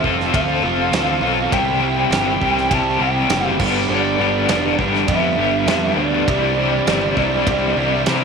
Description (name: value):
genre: classic rock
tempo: 101 BPM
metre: 4/4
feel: straight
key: C major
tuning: A4 = 441 Hz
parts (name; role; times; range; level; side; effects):
- tonewheel organ; sustained chords; 0.0-8.2 s; B3 to C5; -33 LUFS; left 1 dB; none
- cranked stack guitar; riff; 0.0-8.2 s; G2 to A4; -20 LUFS; left 16 dB; overdrive, tremolo
- cranked stack guitar; riff; 0.0-8.2 s; G2 to A4; -22 LUFS; right 13 dB; overdrive
- fuzz picked electric bass; bass; 0.0-8.2 s; F1 to C3; -24 LUFS; left 1 dB; overdrive
- big rock drum kit; drums; 0.0-8.2 s; crash cymbal, kick drum, ride cymbal, snare drum; -24 LUFS; right 4 dB; none
- fuzz lead guitar; melody; 0.3-8.0 s; D5 to A5; -22 LUFS; right 2 dB; distortion
room: moderate spring reverb, RT60 1.4 s, small room reverb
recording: 1960s-style stereo with parts hard left and right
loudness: -15 LUFS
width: side -5 dB against mid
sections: 0.0-8.2 A section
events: none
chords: 0.0 F; 1.5 C; 3.6 G; 6.3 Cadd9